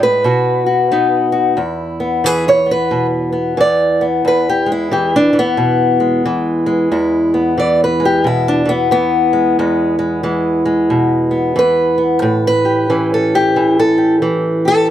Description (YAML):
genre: acoustic country blues, solo or duo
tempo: 90 BPM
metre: 4/4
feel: swing 61% on 8ths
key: E mixolydian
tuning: A4 = 440 Hz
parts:
  - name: fingerpicked old ladder-braced acoustic guitar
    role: solo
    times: 0.0-14.9 s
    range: E2 to D5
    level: -12 LUFS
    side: equal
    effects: none
room: small room ambience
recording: dry, close 1970s-style studio recording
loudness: -12 LUFS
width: side -11 dB against mid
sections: 0.0-1.6 A section; 1.6-14.9 A section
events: steel-string acoustic guitar solo 0.0-1.6, 1.6-14.9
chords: 0.2 B; 1.6 E; 12.2 A7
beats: 0.24 0.91 | 1.58 2.24 2.91 3.58 | 4.25 4.91 5.58 6.25 | 6.91 7.58 8.24 8.91 | 9.57 10.24 10.91 11.57 | 12.24 12.90 13.56 14.23 | 14.89